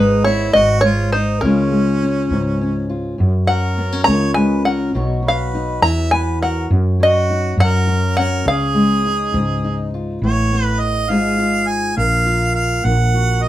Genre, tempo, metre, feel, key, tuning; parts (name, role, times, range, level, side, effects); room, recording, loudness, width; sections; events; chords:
acoustic folk duo or small band; 68 BPM (dotted quarters); 6/8; straight; A4 = 440 Hz
open-back banjo; melody; 0.0-9.9 s; A#4 to A#5; -17 LUFS; equal
clear harmonica; second line; 0.0-13.5 s; C#4 to Ab5; -21 LUFS; right 2 dB
fingerpicked steel-string acoustic guitar; accompaniment; 0.0-13.5 s; F#2 to C#5; -19 LUFS; left 1 dB
woody fretless electric bass; bass; 0.0-13.5 s; G#1 to F#2; -19 LUFS; equal
moderate studio ambience, RT60 0.5 s; band playing live in one room; -14 LUFS; side -13 dB against mid
0.0-10.2 A section; 10.2-13.5 B section
harmonica solo 10.2-13.5
0.0 G#madd11; 0.5 G#5; 1.4 C#6; 3.2 F#; 4.1 C#6; 4.9 Badd9; 5.8 Esus2; 6.7 D#m/F#; 7.6 F#; 8.5 C#add9; 10.2 Aadd9; 11.1 Fm7/Ab; 12.0 A#5; 12.9 D#m/A# (rootless)